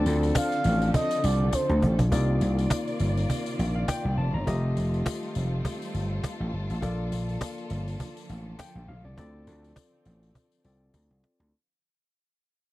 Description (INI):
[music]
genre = early-eighties boogie funk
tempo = 102 BPM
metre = 4/4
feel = swing 56% on 16ths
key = unclear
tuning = A4 = 441 Hz
[part]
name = barky tine electric piano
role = accompaniment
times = 0.0-11.5 s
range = A3 to Bb5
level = -33 LUFS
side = left 2 dB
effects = none
[part]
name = warm studio string section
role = sustained chords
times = 0.0-11.5 s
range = C3 to D5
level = -37 LUFS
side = right 1 dB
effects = none
[part]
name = vintage slap bass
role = bass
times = 0.1-11.5 s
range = F1 to D2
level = -26 LUFS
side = equal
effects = none
[part]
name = cajon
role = drums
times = 0.1-11.5 s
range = none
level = -27 LUFS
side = equal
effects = none
[part]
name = tambourine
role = percussion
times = 0.1-11.1 s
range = none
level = -43 LUFS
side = left 14 dB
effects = none
[part]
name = expressive synth lead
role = melody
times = 0.4-2.0 s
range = C5 to F5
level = -30 LUFS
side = right 1 dB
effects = chorus, tape echo
[sound]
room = little or no reverb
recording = dry, close 1970s-style studio recording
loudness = -24 LUFS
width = side -17 dB against mid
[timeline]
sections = 0.0-2.1 A section; 2.1-11.5 B section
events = drum fill 1.5-2.1, 10.9-11.5; fade-out 2.1-11.5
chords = 0.0 Dm7; 2.1 Cm11; 4.5 F9; 6.8 Bbmaj7; 9.2 Dm7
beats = 0.35 0.94 1.53 | 2.12 2.71 3.29 3.88 | 4.47 5.06 5.65 6.23 | 6.82 7.41 8.00 8.59 | 9.18 9.76 10.35 10.94